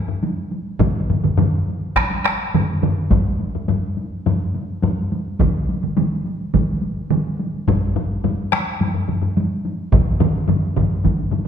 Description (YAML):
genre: japanese traditional, taiko drum ensemble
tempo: 105 BPM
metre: 4/4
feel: straight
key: none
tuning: none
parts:
  - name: taiko ensemble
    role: percussion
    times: 0.1-11.5 s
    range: none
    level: -23 LUFS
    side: equal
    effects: none
  - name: taiko ensemble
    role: percussion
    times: 0.1-11.5 s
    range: none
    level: -21 LUFS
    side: left 4 dB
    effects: none
  - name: taiko ensemble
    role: percussion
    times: 0.8-11.4 s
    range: none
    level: -22 LUFS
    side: right 4 dB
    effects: none
  - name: taiko ensemble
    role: percussion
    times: 0.8-11.2 s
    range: none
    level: -21 LUFS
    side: equal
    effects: none
room: wet recital hall reverb, RT60 1.7 s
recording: recorded in a church or concert hall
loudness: -18 LUFS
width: side -8 dB against mid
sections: 0.0-11.5 A section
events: speeding up 0.0-11.5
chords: none